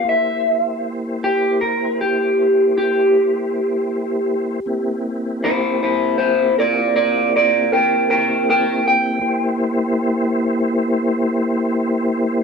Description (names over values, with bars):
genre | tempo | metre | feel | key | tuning
blues | 52 BPM (dotted quarters) | 12/8 | straight | unclear | A4 = 440 Hz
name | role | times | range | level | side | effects
electric guitar through a small old amp | melody | 0.0-10.3 s | E4 to G5 | -16 LUFS | equal | phaser
tonewheel organ | sustained chords | 0.0-12.4 s | Bb3 to C5 | -21 LUFS | equal | slow rotary speaker, chorus vibrato
room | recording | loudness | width
little or no reverb | dry, close 1970s-style studio recording | -16 LUFS | side -5 dB against mid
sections
0.0-12.4 A section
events
clean electric guitar solo 0.0-12.4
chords
0.1 C7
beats
| 0.08 1.22 2.37 3.51 | 4.66 5.80 6.94 8.09 | 9.23 10.37 11.51